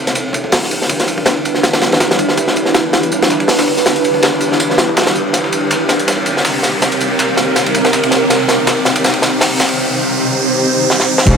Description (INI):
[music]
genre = drum and bass, jungle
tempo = 162 BPM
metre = 4/4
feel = swing 55% on 16ths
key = unclear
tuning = A4 = 440 Hz
[part]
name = granular cloud pad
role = sustained chords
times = 0.0-11.4 s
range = C4 to C5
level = -15 LUFS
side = right 1 dB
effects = built-in reverb
[part]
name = riser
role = sound effects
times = 1.7-11.3 s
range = none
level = -22 LUFS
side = right 1 dB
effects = none
[part]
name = crunchy breakbeat drum kit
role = drums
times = 0.1-11.4 s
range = crash cymbal, hi-hat, kick drum, ride cymbal, snare drum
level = -14 LUFS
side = equal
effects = high-pass filter on kick, high-pass filter on cymbals, high-pass filter on hats, high-pass filter on snare, high-pass filter on room
[part]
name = dusty soul sampler-style drum kit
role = drums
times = 0.1-11.4 s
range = hi-hat, snare drum, tambourine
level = -22 LUFS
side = right 1 dB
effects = high-pass filter on perc, high-pass filter on snare, high-pass filter on hats
[part]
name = saturated sub bass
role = bass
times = 11.3-11.4 s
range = E1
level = -11 LUFS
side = equal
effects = none
[sound]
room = moderate echo chamber reverb, RT60 1.8 s, small room reverb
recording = none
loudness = -11 LUFS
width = side -6 dB against mid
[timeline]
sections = 0.0-11.3 A section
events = build-up 0.0-11.3; riser 1.7-11.3; drum fill 5.3-9.8, 10.9-11.3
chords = 0.0 Em7; 5.3 Cm7